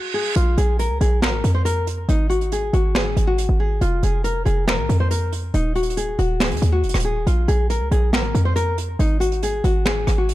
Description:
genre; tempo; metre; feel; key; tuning
hip hop, trap; 139 BPM; 4/4; half-time; unclear; A4 = 439 Hz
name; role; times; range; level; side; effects
nylon-string guitar; melody; 0.0-10.3 s; Eb4 to C5; -23 LUFS; left 2 dB; low-pass filter
short 808-style bass; bass; 0.4-10.3 s; Eb1 to F2; -19 LUFS; equal; none
jazz brush drum kit; drums; 0.4-10.3 s; finger snaps, hi-hat, rim click, snare drum; -25 LUFS; right 1 dB; none
room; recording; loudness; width
small room ambience; dark, warm production; -17 LUFS; side -16 dB against mid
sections
0.4-10.3 A section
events
break 0.0-0.4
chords
0.4 Bb5; 2.1 Ebmadd11/Ab (rootless); 3.8 F5; 5.5 Ebmadd11; 7.3 Bb5; 9.0 Ebmadd11/Ab (rootless)

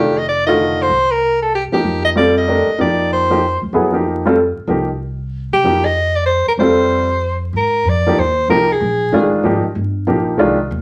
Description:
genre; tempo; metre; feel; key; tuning
modal jazz; 190 BPM; 3/4; swing 64% on 8ths; F mixolydian, Ab lydian from 7.5 s; A4 = 440 Hz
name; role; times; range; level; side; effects
clear soprano saxophone; melody; 0.0-9.3 s; G4 to Eb5; -18 LUFS; equal; none
warm upright piano; accompaniment; 0.0-10.6 s; D3 to Bb4; -18 LUFS; equal; none
upright bass; bass; 0.0-10.8 s; F1 to C3; -25 LUFS; equal; none
room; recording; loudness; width
wet studio reverb, RT60 0.6 s; vinyl crackle; -16 LUFS; mono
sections
0.0-7.5 A section; 7.5-10.8 B section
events
none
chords
0.0 F9sus4; 7.5 Abmaj9

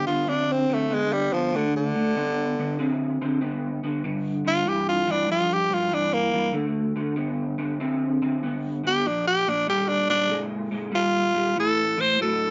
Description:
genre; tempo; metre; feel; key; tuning
blues; 96 BPM; 4/4; swing 67% on 8ths; D minor; A4 = 441 Hz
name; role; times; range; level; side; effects
growling tenor saxophone; melody; 0.0-12.5 s; D3 to C5; -25 LUFS; equal; none
electric guitar through a small old amp; riff; 0.0-12.5 s; G2 to C4; -28 LUFS; equal; ensemble chorus
room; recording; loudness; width
light reverb; nothing above 7.6 kHz; -24 LUFS; mono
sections
0.0-12.5 A section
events
tenor saxophone solo 0.0-12.5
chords
0.0 D5; 4.0 G5; 6.5 D5; 9.1 Bb5; 11.6 A5

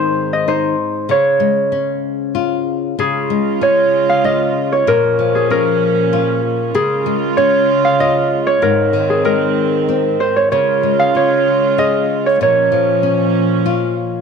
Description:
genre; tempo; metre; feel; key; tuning
children's music, lullaby; 96 BPM; 3/4; straight; Db major; A4 = 439 Hz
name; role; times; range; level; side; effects
Celtic harp; melody; 0.0-14.2 s; Ab4 to F5; -15 LUFS; right 2 dB; none
flamenco guitar; accompaniment; 0.0-14.2 s; Ab2 to Ab4; -19 LUFS; left 9 dB; none
warm chamber string section; sustained chords; 3.0-14.2 s; Ab2 to F4; -20 LUFS; right 9 dB; none
room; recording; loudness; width
moderate echo chamber reverb, RT60 1.8 s, studio reverb; 1960s-style stereo with parts hard left and right; -13 LUFS; side -6 dB against mid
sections
0.0-3.0 A section; 3.0-14.2 A section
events
none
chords
0.0 Ab; 1.1 Db; 4.9 Bbm; 6.7 Db; 8.6 Ab; 10.5 Db; 12.4 Bbm

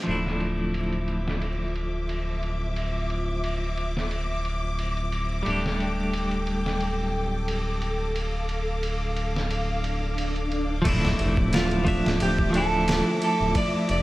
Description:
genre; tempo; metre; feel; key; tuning
trip hop; 89 BPM; 4/4; swing 54% on 16ths; D minor; A4 = 441 Hz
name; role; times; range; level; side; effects
clean electric guitar; accompaniment; 0.0-14.0 s; F3 to E5; -28 LUFS; equal; tremolo
dark symphonic string section; sustained chords; 0.1-14.0 s; F3 to D6; -32 LUFS; left 1 dB; low-pass filter
round analog bass; bass; 0.1-14.0 s; D1 to F1; -28 LUFS; equal; none
trip hop sampler-style drum kit; drums; 0.1-14.0 s; crash cymbal, kick drum, ride cymbal, snare drum; -32 LUFS; equal; low-pass filter on cymbals, low-pass filter on kick, low-pass filter on snare, low-pass filter on room
swell and impact; sound effects; 9.8-13.6 s; none; -33 LUFS; equal; none
electric guitar at the edge of break-up; melody; 11.5-14.0 s; F4 to D5; -26 LUFS; right 2 dB; vintage 12-bit sampler grit, tape echo
room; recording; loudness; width
digital ambience; vinyl crackle; -24 LUFS; side -18 dB against mid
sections
0.1-10.9 A section; 10.9-14.0 B section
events
swell 9.8-10.9; impact 10.9-13.6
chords
0.1 Dmadd9; 5.5 Gsus2/D; 10.9 Dmadd9

